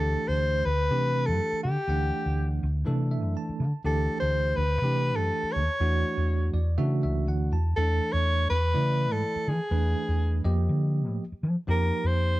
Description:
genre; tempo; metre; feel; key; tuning
electric jazz fusion; 123 BPM; 4/4; straight; D mixolydian; A4 = 440 Hz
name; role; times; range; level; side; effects
clear soprano saxophone; melody; 0.0-12.4 s; G4 to C#5; -28 LUFS; left 1 dB; none
bell-like tine electric piano; accompaniment; 0.0-12.4 s; E3 to A5; -32 LUFS; right 2 dB; fast stereo tremolo
hollow-body short-scale fingered electric bass; bass; 0.0-12.4 s; C#2 to F3; -26 LUFS; equal; none
room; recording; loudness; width
light reverb; dark, warm production; -24 LUFS; side -17 dB against mid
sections
0.0-12.4 A section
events
tine electric piano fill 2.9-3.8, 6.3-7.8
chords
0.0 D13sus4; 5.8 E13sus4; 10.5 F13sus4

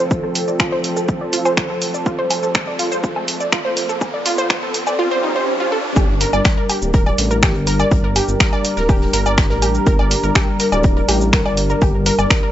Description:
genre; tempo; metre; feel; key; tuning
melodic techno; 123 BPM; 4/4; straight; G minor; A4 = 439 Hz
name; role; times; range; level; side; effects
dark analog pad; sustained chords; 0.0-12.5 s; F3 to Bb4; -23 LUFS; equal; chorus, sidechain pumping
wide unison pluck; arpeggios; 0.0-12.5 s; Eb4 to D5; -20 LUFS; equal; cassette tape, sidechain pumping, tape echo
riser and swell; sound effects; 0.5-6.0 s; none; -27 LUFS; right 1 dB; none
electronic kick drum; drums; 0.1-12.4 s; none; -17 LUFS; equal; overdrive
punchy analog drum machine; drums; 0.1-12.4 s; finger snaps, hi-hat, shaker, woodblock; -21 LUFS; equal; sidechain pumping on hats, sidechain pumping on perc
dark detuned saw bass; bass; 6.0-12.3 s; D1 to A1; -20 LUFS; equal; sidechain pumping
big rock drum kit; drums; 6.0-12.4 s; hi-hat, snare drum; -35 LUFS; left 2 dB; none
room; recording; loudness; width
light reverb, digital ambience; dry, gritty hardware recording, high-pass filter, nothing above 7.8 kHz; -14 LUFS; side -12 dB against mid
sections
0.0-6.0 A section; 6.0-12.5 B section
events
build-up 0.0-6.0; filter sweep on synth pluck 0.0-6.0; riser 0.5-6.0; swell 5.0-6.0; drop 6.0-12.5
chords
0.0 F; 6.0 Gm

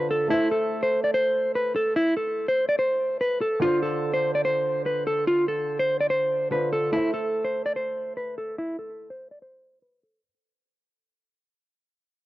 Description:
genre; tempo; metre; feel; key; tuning
hip hop; 145 BPM; 4/4; half-time; A minor; A4 = 440 Hz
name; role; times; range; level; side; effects
mellow electric guitar; melody; 0.0-10.2 s; E4 to D5; -23 LUFS; equal; low-pass filter
dark baby grand piano; accompaniment; 0.0-10.3 s; D3 to E5; -31 LUFS; right 2 dB; low-pass filter
room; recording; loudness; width
studio reverb; dry, gritty hardware recording; -22 LUFS; side -16 dB against mid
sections
0.0-6.9 A section; 6.9-10.2 B section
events
fade-out 6.9-10.2; filter sweep 6.9-10.2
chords
0.3 Am; 3.6 Dm7; 6.9 Am

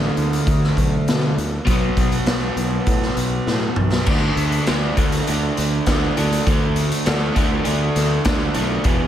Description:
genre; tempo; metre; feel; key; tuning
classic rock; 100 BPM; 4/4; straight; unclear; A4 = 442 Hz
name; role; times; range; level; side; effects
overdriven electric guitar; riff; 0.0-9.1 s; E2 to D4; -20 LUFS; right 1 dB; slapback echo
growling fingered electric bass; bass; 0.0-9.1 s; E1 to B2; -23 LUFS; equal; overdrive
raw garage drum kit; drums; 0.2-9.0 s; crash cymbal, hi-hat, kick drum, snare drum, toms; -21 LUFS; equal; none
room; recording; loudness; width
moderate concert hall reverb, RT60 2.1 s; big arena sound; -17 LUFS; side -10 dB against mid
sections
0.0-4.1 A section; 4.1-9.1 B section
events
drum fill 3.5-4.1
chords
0.0 D5; 1.7 B5; 4.1 D5

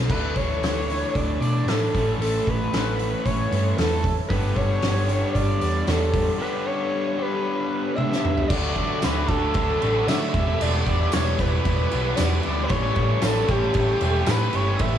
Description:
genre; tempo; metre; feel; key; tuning
indie rock; 114 BPM; 4/4; straight; A mixolydian; A4 = 441 Hz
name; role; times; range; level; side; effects
crunchy overdriven guitar; riff; 0.0-15.0 s; E2 to G4; -29 LUFS; left 6 dB; wide subtle chorus
hollow-body short-scale picked electric bass; bass; 0.0-15.0 s; E1 to D3; -25 LUFS; equal; none
overdriven synth lead; melody; 0.1-15.0 s; G4 to E5; -26 LUFS; equal; distortion, diffuse ambient delay
thick fuzz guitar; riff; 0.1-15.0 s; E3 to A4; -31 LUFS; right 7 dB; distortion, analog chorus, diffuse ambient delay
loose indie drum kit; drums; 0.1-14.9 s; crash cymbal, hi-hat, kick drum, snare drum, toms; -26 LUFS; equal; none
glockenspiel with hard plastic mallets; second line; 8.0-15.0 s; G5 to E6; -37 LUFS; right 4 dB; none
tambourine; percussion; 9.0-14.4 s; none; -44 LUFS; right 10 dB; none
room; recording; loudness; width
moderate huge ambient reverb, RT60 7.3 s; dreamy mix soaked in reverb; -20 LUFS; side -10 dB against mid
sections
0.1-8.5 A section; 8.5-15.0 B section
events
break 6.4-8.5; drum fill 8.0-8.5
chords
0.1 Dsus2; 1.9 A; 4.3 G; 8.5 D; 10.3 Em7; 12.7 A7

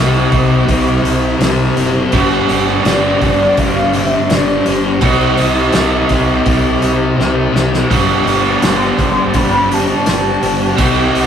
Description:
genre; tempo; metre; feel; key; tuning
rock, shoegaze and dream pop; 83 BPM; 4/4; straight; G major; A4 = 436 Hz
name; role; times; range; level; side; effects
warm velvety synth lead; melody; 0.0-11.3 s; C5 to C6; -18 LUFS; equal; chorus
string machine, violas; sustained chords; 0.0-11.3 s; G4 to C6; -22 LUFS; equal; ensemble chorus
biting overdriven guitar; riff; 0.0-11.3 s; G2 to G4; -16 LUFS; right 4 dB; none
thick fuzz guitar; riff; 0.0-11.3 s; G2 to C4; -15 LUFS; left 3 dB; distortion
growling fingered electric bass; bass; 0.0-11.3 s; F#1 to C2; -23 LUFS; right 1 dB; overdrive
loose indie drum kit; drums; 0.3-11.3 s; hi-hat, kick drum, snare drum; -19 LUFS; right 1 dB; none
room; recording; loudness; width
wet small room reverb, RT60 0.5 s; rough rehearsal-room recording; -11 LUFS; side -8 dB against mid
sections
0.0-11.3 A section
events
drum fill 7.2-7.9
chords
0.0 Cmaj7; 2.1 Gsus4; 5.0 Cmaj7; 7.9 Gsus4

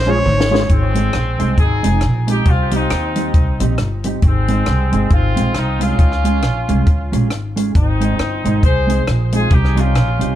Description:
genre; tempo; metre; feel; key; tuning
ska; 136 BPM; 4/4; swing 59% on 8ths; Ab major; A4 = 440 Hz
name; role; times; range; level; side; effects
clear trumpet; melody; 0.0-0.7 s; C5 to Db5; -20 LUFS; equal; tape echo
upright bass; bass; 0.0-10.4 s; F1 to Eb2; -17 LUFS; equal; none
mellow electric guitar; accompaniment; 0.1-10.3 s; G3 to Ab4; -21 LUFS; right 2 dB; spring reverb
tonewheel organ; stabs; 0.1-0.6 s; Db4 to Db5; -24 LUFS; left 1 dB; overdrive, chorus vibrato, slow rotary speaker, tape echo
compact cocktail drum kit; drums; 0.3-10.3 s; hi-hat, kick drum, rim click, snare drum, toms; -16 LUFS; equal; none
clear horn section; melody; 0.7-10.4 s; Ab3 to C5; -21 LUFS; left 1 dB; tape echo
room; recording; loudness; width
light reverb; dark, warm production; -13 LUFS; side -12 dB against mid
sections
0.7-10.4 A section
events
drum fill 0.0-0.7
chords
0.0 Db; 0.7 Ab; 2.5 Cm; 4.2 Ab; 6.0 Db; 7.7 Ab; 9.5 Cm

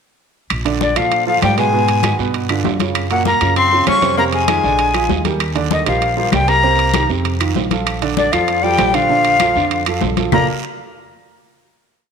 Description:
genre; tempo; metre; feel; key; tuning
Afro-Cuban jazz; 196 BPM; 4/4; straight; Bb major; A4 = 441 Hz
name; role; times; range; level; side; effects
upright bass; bass; 0.5-10.5 s; Bb1 to Bb2; -22 LUFS; equal; none
claves; percussion; 0.5-10.4 s; none; -31 LUFS; left 11 dB; none
congas; percussion; 0.5-10.4 s; none; -23 LUFS; left 9 dB; none
guiro; percussion; 0.5-10.4 s; none; -30 LUFS; right 13 dB; none
timbales; percussion; 0.5-10.4 s; none; -24 LUFS; right 11 dB; none
warm upright piano; accompaniment; 0.7-10.5 s; Bb2 to F5; -21 LUFS; right 9 dB; none
breathy bright jazz flute; melody; 0.8-10.5 s; D5 to Db6; -16 LUFS; left 2 dB; none
bright tenor saxophone; second line; 0.8-10.5 s; D3 to Db4; -24 LUFS; left 8 dB; none
room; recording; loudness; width
moderate echo chamber reverb, RT60 1.7 s, studio ambience; 1960s-style stereo with parts hard left and right; -13 LUFS; side -6 dB against mid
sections
0.5-10.3 A section; 10.3-11.6 final chord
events
none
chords
0.5 Bbmaj7; 1.7 Abm7; 2.3 G7; 3.0 Gbmaj7; 4.2 Fm7; 4.8 Bb7; 5.4 Ebmaj7; 6.6 Cm7; 7.2 F7; 7.9 Bbmaj7

